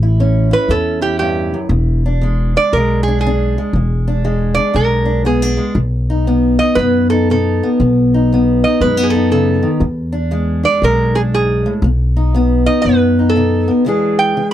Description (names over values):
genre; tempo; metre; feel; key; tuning
acoustic country blues, solo or duo; 118 BPM; 4/4; swing 63% on 8ths; E mixolydian; A4 = 438 Hz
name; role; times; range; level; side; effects
fingerpicked acoustic archtop guitar; accompaniment; 0.0-14.5 s; E2 to G#4; -16 LUFS; left 1 dB; none
upright bass; bass; 0.0-13.7 s; E1 to F#2; -16 LUFS; equal; none
metal-body resonator slide guitar; melody; 0.5-14.5 s; G4 to G5; -16 LUFS; right 2 dB; none
room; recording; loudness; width
light reverb; dry, close 1970s-style studio recording; -12 LUFS; side -11 dB against mid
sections
0.0-13.9 A section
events
none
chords
0.0 A7; 1.7 E7; 5.8 B; 9.8 E7; 11.8 B; 13.9 E7